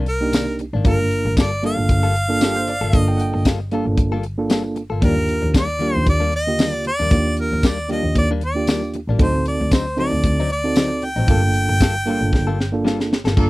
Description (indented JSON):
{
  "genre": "straight-eighth soul blues",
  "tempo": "115 BPM",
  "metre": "4/4",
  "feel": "swing 54% on 16ths",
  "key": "G minor",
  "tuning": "A4 = 437 Hz",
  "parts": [
    { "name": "direct-recorded clean electric guitar", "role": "stabs", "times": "0.0-13.5 s", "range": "C3 to A4", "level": "-26 LUFS", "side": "left 5 dB", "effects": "none" },
    { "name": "dark double bass", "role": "bass", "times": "0.0-13.5 s", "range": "G1 to Eb2", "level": "-21 LUFS", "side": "equal", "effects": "none" },
    { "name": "clear harmonica", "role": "melody", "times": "0.1-12.9 s", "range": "Bb4 to G5", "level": "-23 LUFS", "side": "equal", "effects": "none" },
    { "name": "tight funk drum kit", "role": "drums", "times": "0.1-13.5 s", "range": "crash cymbal, hi-hat, kick drum, snare drum, tambourine", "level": "-17 LUFS", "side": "equal", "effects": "none" },
    { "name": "mellow reed electric piano", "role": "accompaniment", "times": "0.2-13.5 s", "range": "D3 to Bb4", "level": "-23 LUFS", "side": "right 2 dB", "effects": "fast tremolo" },
    { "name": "bright upright piano", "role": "second line", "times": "2.4-3.5 s", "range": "G4 to G5", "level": "-29 LUFS", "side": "right 3 dB", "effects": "none" },
    { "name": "clear horn section", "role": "sustained chords", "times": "13.4-13.5 s", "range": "Bb3 to A4", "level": "-27 LUFS", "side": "right 1 dB", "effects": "none" }
  ],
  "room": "little or no reverb",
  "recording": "dry, close 1970s-style studio recording",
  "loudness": "-16 LUFS",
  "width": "side -20 dB against mid",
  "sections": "0.0-13.4 A section",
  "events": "drum fill 12.3-13.4",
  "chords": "0.0 Cm9; 0.8 Gm9; 5.0 Ebmaj7; 9.2 D7b9; 11.3 Gm9"
}